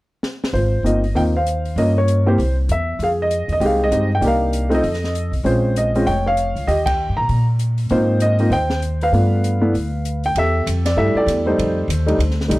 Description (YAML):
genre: jazz piano trio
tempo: 196 BPM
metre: 4/4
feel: swing 60% on 8ths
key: Ab major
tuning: A4 = 440 Hz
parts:
  - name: open jazz drum kit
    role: drums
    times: 0.2-12.6 s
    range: hi-hat, kick drum, ride cymbal, snare drum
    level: -30 LUFS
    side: equal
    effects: none
  - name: warm baby grand piano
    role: melody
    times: 0.5-12.6 s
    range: G3 to Bb5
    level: -18 LUFS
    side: equal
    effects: none
  - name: upright bass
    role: bass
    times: 0.5-12.6 s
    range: F1 to Bb2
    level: -19 LUFS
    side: equal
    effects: none
room: small room ambience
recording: dry, close 1970s-style studio recording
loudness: -16 LUFS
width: side -19 dB against mid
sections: 0.5-10.4 A section; 10.4-12.6 B section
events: drum fill 0.2-0.5; band accent 6.8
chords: 0.0 N.C.; 0.5 Ab6; 1.8 Gm7b5; 2.4 C; 3.0 Fm9; 4.2 Cm9; 4.8 F7; 5.4 Bbm9; 6.7 Eb; 7.9 Ab6; 9.1 G9; 10.4 Fmaj13/E; 11.6 F13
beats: 0.23 | 0.54 0.84 1.15 1.46 | 1.76 2.07 2.38 2.69 | 2.99 3.30 3.60 3.91 | 4.22 4.53 4.83 5.14 | 5.45 5.75 6.06 6.37 | 6.67 6.98 7.29 7.59 | 7.90 8.21 8.51 8.82 | 9.13 9.43 9.74 10.05 | 10.35 10.66 10.97 11.27 | 11.58 11.89 12.19 12.50